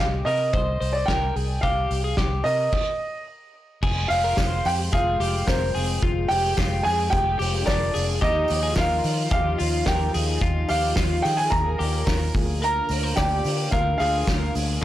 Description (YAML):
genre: jangly indie pop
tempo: 109 BPM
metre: 4/4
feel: straight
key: unclear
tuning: A4 = 440 Hz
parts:
  - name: warm upright piano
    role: melody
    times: 0.0-14.5 s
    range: C5 to Bb5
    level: -25 LUFS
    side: right 1 dB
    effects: tape echo
  - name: twelve-string electric guitar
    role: arpeggios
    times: 0.0-14.8 s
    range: F4 to D5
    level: -30 LUFS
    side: left 5 dB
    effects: none
  - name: vintage muted fingered electric bass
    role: bass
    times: 0.0-14.8 s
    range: F1 to Eb3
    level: -26 LUFS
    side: equal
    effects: none
  - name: loose indie drum kit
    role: drums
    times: 0.3-14.7 s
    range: crash cymbal, hi-hat, kick drum, snare drum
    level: -26 LUFS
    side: equal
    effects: none
  - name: lush unison pad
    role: sustained chords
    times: 3.8-14.8 s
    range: D3 to G5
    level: -33 LUFS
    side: equal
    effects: chorus
  - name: dark studio violin section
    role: second line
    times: 4.1-14.5 s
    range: C4 to Bb4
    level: -34 LUFS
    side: equal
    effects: none
  - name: tambourine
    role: percussion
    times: 4.1-14.7 s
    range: none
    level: -44 LUFS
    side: right 3 dB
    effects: none
room: light reverb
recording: blown-out, overdriven recording, overdrive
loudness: -20 LUFS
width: side -13 dB against mid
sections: 0.0-3.8 A section; 3.8-14.8 B section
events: stop 2.7-3.8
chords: 0.0 Cm7; 3.8 Fmadd9; 8.2 Ebadd9; 12.3 Bb/D